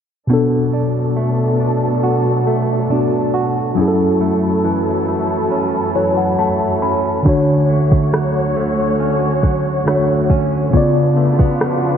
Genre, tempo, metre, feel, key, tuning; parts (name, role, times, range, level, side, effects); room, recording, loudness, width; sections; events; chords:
contemporary R&B; 69 BPM; 4/4; straight; A4 = 440 Hz
tine electric piano; accompaniment; 0.3-12.0 s; B2 to B5; -17 LUFS; left 2 dB; medium stereo tremolo
dark studio string section; sustained chords; 0.3-12.0 s; D2 to C#5; -20 LUFS; left 1 dB; sidechain pumping
direct-recorded clean electric guitar; arpeggios; 0.3-12.0 s; F#2 to F#4; -20 LUFS; right 6 dB; wide subtle chorus
smooth R&B drum kit; drums; 7.3-11.8 s; kick drum, rim click; -17 LUFS; equal; overdrive
swell; sound effects; 11.3-12.0 s; -26 LUFS; right 4 dB
moderate lush hall reverb, RT60 2.0 s; bright 1980s-style digital production, low-pass filter; -14 LUFS; side -8 dB against mid
0.3-12.0 A section
tine electric piano fill 5.5-7.3; swell 11.3-12.0
0.3 Bm7; 3.8 F#m7; 7.3 Dmaj7; 10.7 C#7b9